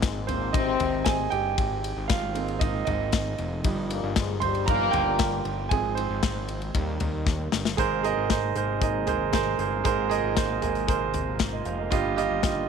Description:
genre	piano-driven pop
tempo	116 BPM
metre	4/4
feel	straight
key	Ab major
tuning	A4 = 438 Hz
part	warm French horn section	second line	0.0-5.4 s	G2 to C4	-29 LUFS	left 11 dB	none
part	clear concert grand piano	accompaniment	0.0-12.7 s	G2 to C6	-27 LUFS	right 10 dB	none
part	fat analog bass	bass	0.0-12.7 s	F1 to Eb2	-31 LUFS	left 2 dB	none
part	modern studio drum kit	drums	0.0-12.6 s	hi-hat, kick drum, ride cymbal, snare drum, toms	-28 LUFS	left 4 dB	none
part	chorused pulse-width pad	sustained chords	7.8-12.7 s	C3 to F4	-36 LUFS	left 2 dB	none
room	light reverb, small room ambience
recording	1960s-style stereo with parts hard left and right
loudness	-23 LUFS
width	side -6 dB against mid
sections	0.0-7.8 A section; 7.8-12.7 B section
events	grand piano solo 0.0-7.8; drum fill 7.3-7.8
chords	0.0 Abadd9; 3.6 Ebadd9/G; 5.7 Fm/Ab; 6.7 Eb; 7.8 Abadd9; 11.9 Ebadd9/G

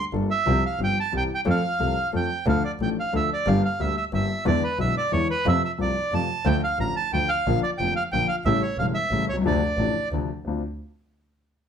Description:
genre	tango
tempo	180 BPM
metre	3/4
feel	rubato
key	D minor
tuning	A4 = 440 Hz
part	bandoneon	melody	0.0-10.1 s	B4 to Bb5	-25 LUFS	right 3 dB	slapback echo
part	warm grand piano	accompaniment	0.1-10.6 s	E1 to A4	-26 LUFS	left 4 dB	none
part	clear double bass	bass	0.1-10.6 s	E1 to F2	-27 LUFS	right 1 dB	none
room	moderate studio reverb, RT60 0.8 s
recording	close, detailed microphones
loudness	-21 LUFS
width	side -8 dB against mid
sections	0.0-2.5 A section; 2.5-10.5 B section; 10.5-11.5 C section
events	none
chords	0.5 Csus4; 1.1 C; 1.5 F; 2.5 Dm; 3.5 Gm; 4.5 E7; 5.5 F; 6.5 Dm; 7.5 Bb; 8.5 A7; 9.4 Dm7

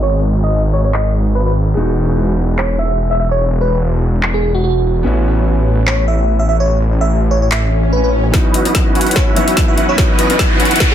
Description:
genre	future bass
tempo	146 BPM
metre	4/4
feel	swing 55% on 16ths, half-time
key	C# minor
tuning	A4 = 440 Hz
part	bell-like FM electric piano	melody	0.0-10.9 s	F#4 to E5	-19 LUFS	right 1 dB	chorus, sidechain pumping, dub echo
part	felt-muted upright piano	accompaniment	0.0-10.9 s	E3 to F#4	-22 LUFS	left 1 dB	sidechain pumping, tape echo
part	wide detuned saw bass	bass	0.0-8.3 s	E1 to A1	-14 LUFS	equal	chorus, sidechain pumping
part	trap drum kit	drums	0.9-10.9 s	handclaps, hi-hat, snare drum	-19 LUFS	left 1 dB	small room ambience
part	swell and riser	sound effects	7.6-10.9 s	none	-21 LUFS	left 1 dB	none
part	supersaw chords	riff	8.3-10.9 s	C#4 to F#5	-17 LUFS	right 1 dB	analog chorus, sidechain pumping, low-pass filter
part	electronic kick drum	drums	8.3-10.9 s	none	-14 LUFS	equal	distortion, small room ambience
room	light reverb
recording	dense, heavily limited modern master, low-pass filter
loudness	-12 LUFS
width	side -10 dB against mid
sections	0.0-8.3 A section; 8.3-10.9 B section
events	filter sweep 0.0-8.3; swell 7.6-8.3; build-up 8.3-10.9; drum fill 8.3-10.9; filter sweep on supersaw synth 8.3-10.9; riser 9.7-10.9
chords	0.0 G#m7; 1.8 Emaj7; 5.0 A69; 8.3 C#m11

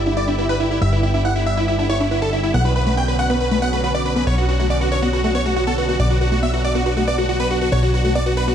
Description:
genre	trance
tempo	139 BPM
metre	4/4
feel	straight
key	B minor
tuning	A4 = 440 Hz
part	big supersaw lead	melody	0.0-8.5 s	E4 to G5	-22 LUFS	equal	ping-pong delay
part	clear concert grand piano	second line	0.0-8.5 s	E4 to G5	-27 LUFS	equal	tape echo
part	lush unison pad	sustained chords	0.0-8.5 s	D3 to G4	-25 LUFS	right 1 dB	chorus
part	plucky analog bass	bass	0.0-8.5 s	G1 to B1	-20 LUFS	equal	none
part	tight sequenced synth	arpeggios	0.1-8.5 s	A3 to E5	-25 LUFS	equal	chorus, vintage 12-bit sampler grit, tape echo
room	light reverb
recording	dark, warm production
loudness	-16 LUFS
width	side -9 dB against mid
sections	0.0-8.5 A section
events	none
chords	0.0 Em7/G; 2.5 Bmadd9

